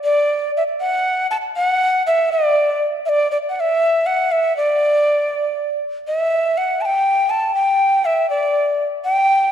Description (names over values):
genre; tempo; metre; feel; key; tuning
andean folk; 80 BPM (dotted quarters); 6/8; straight; unclear; A4 = 439 Hz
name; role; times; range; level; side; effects
breathy quena; solo; 0.0-9.5 s; D5 to A5; -15 LUFS; equal; slapback echo
room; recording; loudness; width
wet concert hall reverb, RT60 2.4 s; dark, warm production; -16 LUFS; side -9 dB against mid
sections
0.0-6.1 A section; 6.1-9.5 A section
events
none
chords
none